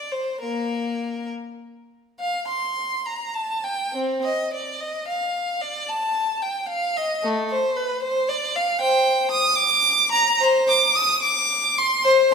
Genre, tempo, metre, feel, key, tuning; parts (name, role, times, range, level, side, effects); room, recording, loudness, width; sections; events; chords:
classical, baroque-style suite movement for unaccompanied violin; 65-79 BPM (dotted quarters); 6/8; rubato; Bb major; A4 = 442 Hz
clear violin; solo; 0.0-12.3 s; A3 to Eb6; -20 LUFS; equal
wet stone room reverb, RT60 1.5 s; heard from further back in the room; -20 LUFS; side -5 dB against mid
0.0-2.2 A section; 2.2-12.3 B section